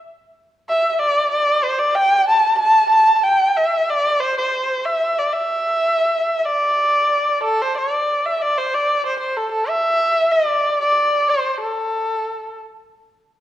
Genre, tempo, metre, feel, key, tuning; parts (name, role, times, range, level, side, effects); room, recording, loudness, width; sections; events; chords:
chinese traditional; 93 BPM; 2/4; rubato; D shang mode; A4 = 440 Hz
dark erhu; solo; 0.7-12.6 s; A4 to A5; -16 LUFS; equal
wet recital hall reverb, RT60 1.4 s; dark, warm production; -16 LUFS; side -12 dB against mid
0.0-7.8 A section; 7.8-13.4 B section